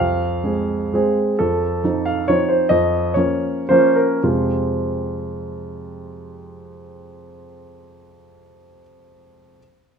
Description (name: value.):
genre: classical, romantic triple-time dance for piano with dotted rhythms.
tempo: 101-149 BPM.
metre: 3/4.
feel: rubato.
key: F minor.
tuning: A4 = 440 Hz.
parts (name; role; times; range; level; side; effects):
warm grand piano; solo; 0.0-9.6 s; F2 to F5; -17 LUFS; right 1 dB; none.
room: moderate large studio reverb, RT60 1.3 s.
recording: none.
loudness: -16 LUFS.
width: side -6 dB against mid.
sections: 0.0-1.4 A section; 1.4-4.2 B section; 4.2-7.3 C section.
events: slowing down 0.7-4.2.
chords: 0.0 Fm; 1.4 F7; 2.7 Bbm/F; 4.2 Fm.